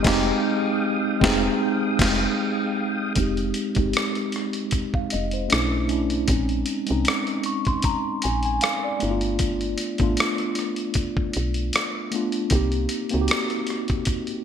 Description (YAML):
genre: R&B, neo-soul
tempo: 77 BPM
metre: 4/4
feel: swing 54% on 16ths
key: F minor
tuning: A4 = 437 Hz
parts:
  - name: mellow tine electric piano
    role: accompaniment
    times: 0.0-14.4 s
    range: Ab3 to Db6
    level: -24 LUFS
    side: equal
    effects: medium stereo tremolo, low-pass filter
  - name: tonewheel organ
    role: sustained chords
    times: 0.0-3.1 s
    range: Ab3 to Eb6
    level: -29 LUFS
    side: equal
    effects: overdrive, chorus vibrato, slow rotary speaker
  - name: woody FM bass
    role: bass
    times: 0.0-13.3 s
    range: F1 to Db2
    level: -26 LUFS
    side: equal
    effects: none
  - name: boom bap sampler-style drum kit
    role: drums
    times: 0.0-14.4 s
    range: crash cymbal, hi-hat, kick drum, rim click, snare drum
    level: -25 LUFS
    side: equal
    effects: gated reverb
room: moderate plate reverb, RT60 2.4 s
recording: bright 1980s-style digital production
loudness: -21 LUFS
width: side -8 dB against mid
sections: 0.0-3.2 A section; 3.2-14.4 B section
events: band accent 0.0-3.2; kick muted 1.6-3.2; filter sweep on tine electric piano 3.2-14.4; tine electric piano fill 7.1-9.4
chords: 0.0 Fm9; 5.5 Bm11; 6.3 Bbm11; 9.0 G7; 12.5 Cm7